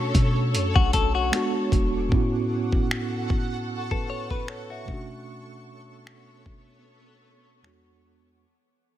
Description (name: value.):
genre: contemporary R&B.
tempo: 76 BPM.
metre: 4/4.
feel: swing 54% on 16ths.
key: A major.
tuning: A4 = 439 Hz.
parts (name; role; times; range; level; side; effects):
mellow tine electric piano; accompaniment; 0.0-8.4 s; E2 to E5; -28 LUFS; right 3 dB; medium stereo tremolo.
granular cloud pad; sustained chords; 0.0-8.4 s; B3 to C#6; -34 LUFS; left 1 dB; built-in reverb, sidechain pumping.
clean 808-style bass; bass; 0.0-2.1 s; E1 to B2; -25 LUFS; equal; none.
dusty soul sampler-style drum kit; drums; 0.1-7.8 s; finger snaps, hi-hat, kick drum; -24 LUFS; equal; overdrive.
direct-recorded clean electric guitar; arpeggios; 0.8-5.1 s; F#4 to C#5; -28 LUFS; left 8 dB; none.
room: little or no reverb.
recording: none.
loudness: -22 LUFS.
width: side -12 dB against mid.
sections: 0.0-8.4 A section.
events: fade-out 0.0-8.4; break 6.9-8.4.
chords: 0.0 Bm9; 1.3 E9; 2.1 A6; 4.9 Bm9; 7.6 E9.